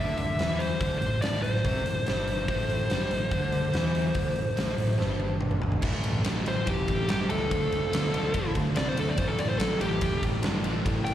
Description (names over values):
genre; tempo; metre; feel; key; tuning
blues rock power trio and southern rock; 143 BPM; 4/4; straight; A minor; A4 = 438 Hz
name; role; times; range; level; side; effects
fuzz lead guitar; melody; 0.0-11.1 s; G4 to G5; -30 LUFS; left 1 dB; distortion, slapback echo
overdriven semi-hollow guitar; riff; 0.0-11.1 s; G2 to B3; -31 LUFS; equal; none
overdriven fingered electric bass; bass; 0.0-11.1 s; E1 to C3; -32 LUFS; equal; none
huge arena drum kit; drums; 0.2-11.1 s; crash cymbal, hi-hat, kick drum, ride cymbal, snare drum, toms; -30 LUFS; equal; none
overdriven tonewheel organ; sustained chords; 5.8-11.1 s; F3 to C5; -40 LUFS; right 2 dB; slow rotary speaker, chorus vibrato
room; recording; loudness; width
little or no reverb; live gig heard through the venue's PA, recital hall reverb; -25 LUFS; side -11 dB against mid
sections
0.0-5.8 A section; 5.8-11.1 B section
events
drum fill 5.0-5.8; lead electric guitar solo 5.8-11.1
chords
0.0 Am; 5.8 Am7; 7.5 Dm7; 9.2 Am7